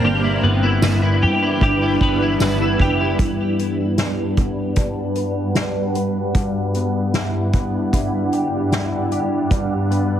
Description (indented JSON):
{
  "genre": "dream pop",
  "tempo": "76 BPM",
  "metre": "4/4",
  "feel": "straight",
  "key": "G major",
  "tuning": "A4 = 441 Hz",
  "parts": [
    { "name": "granular cloud pad", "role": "sustained chords", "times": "0.0-10.2 s", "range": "G2 to F#5", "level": "-22 LUFS", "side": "right 2 dB", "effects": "built-in reverb, low-pass filter" },
    { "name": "twelve-string electric guitar", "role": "arpeggios", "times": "0.0-10.2 s", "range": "G2 to B4", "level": "-21 LUFS", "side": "left 2 dB", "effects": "ensemble chorus, low-pass filter, digital delay" },
    { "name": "vintage muted picked electric bass", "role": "bass", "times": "0.0-3.1 s", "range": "F#1 to G2", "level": "-21 LUFS", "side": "equal", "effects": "none" },
    { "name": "soft-mallet drum kit", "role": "drums", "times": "0.0-10.1 s", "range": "hi-hat, kick drum, ride cymbal, snare drum, tambourine", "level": "-22 LUFS", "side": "equal", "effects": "none" }
  ],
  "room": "light reverb, small room ambience",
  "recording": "heavily compressed radio sound, multiband compression",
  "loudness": "-17 LUFS",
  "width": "side -10 dB against mid",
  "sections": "0.0-3.2 A section; 3.2-10.2 B section",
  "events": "filter sweep 3.2-10.2",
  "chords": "0.0 G6; 3.2 Gmaj7"
}